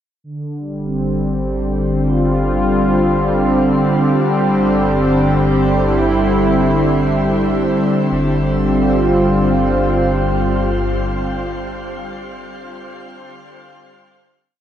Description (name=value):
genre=ambient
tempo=free time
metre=none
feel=none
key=unclear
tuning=A4 = 440 Hz
part: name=warm analog pad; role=sustained chords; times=0.2-11.6 s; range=D3 to F4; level=-15 LUFS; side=equal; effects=chorus
part: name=deep rumbling drone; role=bass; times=0.2-11.0 s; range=G1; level=-24 LUFS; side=equal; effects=built-in reverb
room=wet shimmer reverb, RT60 7.8 s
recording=none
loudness=-13 LUFS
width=side -10 dB against mid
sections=0.2-8.1 A section; 8.1-12.0 final chord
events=none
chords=0.2 G5; 4.2 Cadd9/G; 8.1 G5